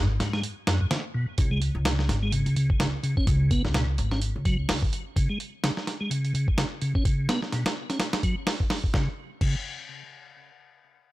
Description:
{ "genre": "breakbeat, breaks", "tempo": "127 BPM", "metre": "4/4", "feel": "swing 57% on 16ths", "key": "unclear", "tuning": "A4 = 435 Hz", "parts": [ { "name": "tonewheel organ", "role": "riff", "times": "0.0-9.6 s", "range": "F#2 to C#4", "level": "-28 LUFS", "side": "equal", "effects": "chorus vibrato, low-pass filter, ping-pong delay" }, { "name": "upright bass", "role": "bass", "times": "0.0-4.8 s", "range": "G#1 to G#2", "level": "-27 LUFS", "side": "equal", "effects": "none" }, { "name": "dusty soul sampler-style drum kit", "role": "drums", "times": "0.2-9.6 s", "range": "crash cymbal, hi-hat, kick drum, snare drum", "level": "-27 LUFS", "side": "equal", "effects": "studio reverb" } ], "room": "little or no reverb", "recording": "none", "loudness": "-24 LUFS", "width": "side -18 dB against mid", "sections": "0.0-1.4 A section; 1.4-8.9 B section; 8.9-11.1 C section", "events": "drop 0.0-1.4; break 0.4-1.4", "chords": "0.0 G#m7; 1.4 C#5; 8.9 N.C." }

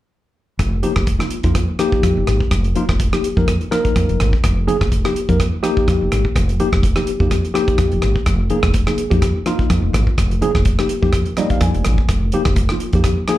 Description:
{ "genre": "electric jazz fusion", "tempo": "125 BPM", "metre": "4/4", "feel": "swing 55% on 16ths", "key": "F minor", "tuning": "A4 = 440 Hz", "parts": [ { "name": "woody fretless electric bass", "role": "bass", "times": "0.6-13.2 s", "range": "F1 to F2", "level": "-18 LUFS", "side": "equal", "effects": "none" }, { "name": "damped 70s drum kit", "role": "drums", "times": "0.6-13.4 s", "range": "hi-hat, kick drum, rim click", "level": "-20 LUFS", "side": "equal", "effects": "none" }, { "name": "mellow tine electric piano", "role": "accompaniment", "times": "0.8-13.4 s", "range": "F3 to Ab5", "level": "-19 LUFS", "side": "left 1 dB", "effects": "medium stereo tremolo, slapback echo" } ], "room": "little or no reverb", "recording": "live gig heard through the venue's PA, club reverb", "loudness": "-15 LUFS", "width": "side -14 dB against mid", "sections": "0.6-13.4 A section", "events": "tine electric piano fill 11.1-12.1", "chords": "0.6 Fm11" }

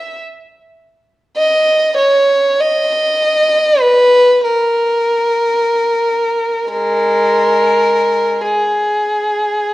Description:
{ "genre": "classical, free, expressive piece for unaccompanied violin", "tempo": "free time", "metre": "none", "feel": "none", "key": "G# minor", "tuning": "A4 = 441 Hz", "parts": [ { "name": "warm violin", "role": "solo", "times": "0.0-9.7 s", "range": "G#3 to E5", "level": "-11 LUFS", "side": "equal", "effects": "none" } ], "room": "moderate recital hall reverb, RT60 1.5 s", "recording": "worn, warbling old tape, cassette tape, warbly pitch drift", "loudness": "-11 LUFS", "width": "side -16 dB against mid", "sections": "0.0-9.7 A section", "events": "none", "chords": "none" }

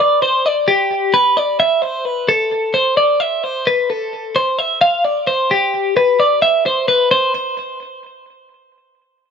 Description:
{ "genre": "rock", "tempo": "261 BPM (eighths)", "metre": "7/8", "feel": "straight", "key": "C major", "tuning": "A4 = 441 Hz", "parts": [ { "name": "twelve-string electric guitar", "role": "solo", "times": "0.0-7.3 s", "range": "G4 to F5", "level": "-13 LUFS", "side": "left 1 dB", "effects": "warbly pitch drift, tape echo" } ], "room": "moderate studio ambience, RT60 0.5 s", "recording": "none", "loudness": "-13 LUFS", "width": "side -6 dB against mid", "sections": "0.7-7.1 A section; 7.1-8.7 B section", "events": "none", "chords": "none" }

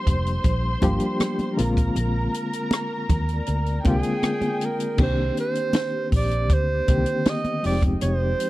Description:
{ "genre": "lush 1970s-style soul", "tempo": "79 BPM", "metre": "4/4", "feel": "straight", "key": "C minor", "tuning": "A4 = 439 Hz", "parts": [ { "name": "muted studio string section", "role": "second line", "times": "0.0-5.0 s", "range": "Ab4 to C6", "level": "-31 LUFS", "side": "equal", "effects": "none" }, { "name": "barky reed electric piano", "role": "accompaniment", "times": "0.0-8.5 s", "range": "D3 to G4", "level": "-26 LUFS", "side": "left 2 dB", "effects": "overdrive, fast tremolo" }, { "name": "vintage muted fingered electric bass", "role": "bass", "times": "0.1-8.3 s", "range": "F1 to Eb2", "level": "-24 LUFS", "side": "equal", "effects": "none" }, { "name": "compact cocktail drum kit", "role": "drums", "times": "0.1-8.5 s", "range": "crash cymbal, hi-hat, kick drum, rim click, snare drum", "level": "-24 LUFS", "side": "equal", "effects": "none" }, { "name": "congas", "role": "percussion", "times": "0.4-8.2 s", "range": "none", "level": "-28 LUFS", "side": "right 2 dB", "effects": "none" }, { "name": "vibraphone with soft mallets", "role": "texture", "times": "3.1-8.0 s", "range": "G4 to D5", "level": "-38 LUFS", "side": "left 3 dB", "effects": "none" }, { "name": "breathy alto saxophone", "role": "melody", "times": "3.9-8.5 s", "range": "Ab4 to Eb5", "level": "-26 LUFS", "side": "right 3 dB", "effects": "tape echo" } ], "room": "studio reverb", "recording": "dry, close 1970s-style studio recording", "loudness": "-20 LUFS", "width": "side -17 dB against mid", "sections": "0.0-5.0 A section; 5.0-8.5 B section", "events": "none", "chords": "0.0 Gm7; 1.6 Bb7; 5.0 Cm7; 7.6 Fm7" }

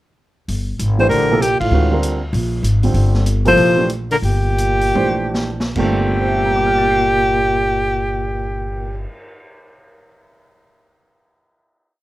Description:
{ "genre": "modal jazz", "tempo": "137-195 BPM", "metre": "4/4", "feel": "swing 63% on 8ths", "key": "G dorian", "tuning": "A4 = 440 Hz", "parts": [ { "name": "upright bass", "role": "bass", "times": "0.5-9.0 s", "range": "G1 to D2", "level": "-19 LUFS", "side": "equal", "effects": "none" }, { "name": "vintage drum kit", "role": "drums", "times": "0.5-9.2 s", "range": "crash cymbal, cymbal swell, hi-hat, kick drum, ride cymbal, snare drum, toms", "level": "-30 LUFS", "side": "equal", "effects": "none" }, { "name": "clear alto saxophone", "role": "melody", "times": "1.0-9.1 s", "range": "F4 to C5", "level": "-17 LUFS", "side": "equal", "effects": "none" }, { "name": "breathy trombone", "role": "second line", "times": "1.0-9.0 s", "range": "A2 to F3", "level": "-23 LUFS", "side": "left 3 dB", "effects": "none" }, { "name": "warm grand piano", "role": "accompaniment", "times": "1.0-10.2 s", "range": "G2 to C7", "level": "-21 LUFS", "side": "right 3 dB", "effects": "none" } ], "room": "little or no reverb", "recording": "close, detailed microphones", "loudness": "-14 LUFS", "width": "side -16 dB against mid", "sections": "0.5-5.8 A section; 5.8-9.2 final chord", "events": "band accent 1.6; slowing down 2.9-5.8; drum fill 4.9-5.8", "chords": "0.5 Gm11" }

